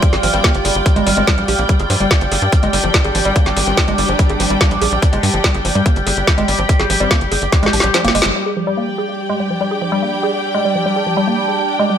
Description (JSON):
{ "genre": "psychedelic trance", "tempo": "144 BPM", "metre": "4/4", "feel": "straight", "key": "unclear", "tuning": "A4 = 439 Hz", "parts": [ { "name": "overtone-sweeping drone", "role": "sustained chords", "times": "0.0-12.0 s", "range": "G3 to G4", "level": "-21 LUFS", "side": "right 1 dB", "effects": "chorus, built-in reverb, phaser, sidechain pumping" }, { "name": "woody wave-folded pluck", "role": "riff", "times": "0.0-12.0 s", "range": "F3 to Ab4", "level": "-20 LUFS", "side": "right 1 dB", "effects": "chorus, auto-pan, sidechain pumping, tape echo" }, { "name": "drum and bass drum kit", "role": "drums", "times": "0.0-8.3 s", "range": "hi-hat, snare drum", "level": "-18 LUFS", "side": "equal", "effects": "none" }, { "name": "electronic kick drum", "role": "drums", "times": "0.0-7.6 s", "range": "none", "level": "-14 LUFS", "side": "equal", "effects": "none" }, { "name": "dark studio string section", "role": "texture", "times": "0.0-12.0 s", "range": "G4 to G5", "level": "-22 LUFS", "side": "equal", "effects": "sidechain pumping" }, { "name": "tight sequencer bass", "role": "bass", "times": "0.1-8.3 s", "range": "G1 to G2", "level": "-20 LUFS", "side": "equal", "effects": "none" }, { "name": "formant-sweep wobble bass", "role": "second line", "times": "0.3-4.3, 7.0-8.0 s", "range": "G3 to C4", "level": "-30 LUFS", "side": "left 4 dB", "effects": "none" } ], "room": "moderate digital room reverb, RT60 1.0 s", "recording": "none", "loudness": "-13 LUFS", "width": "side -9 dB against mid", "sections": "0.0-8.4 A section; 8.4-12.0 B section", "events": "drum fill 7.5-8.4; kick drops out 7.9-8.4; band accent 8.2", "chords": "0.0 G5" }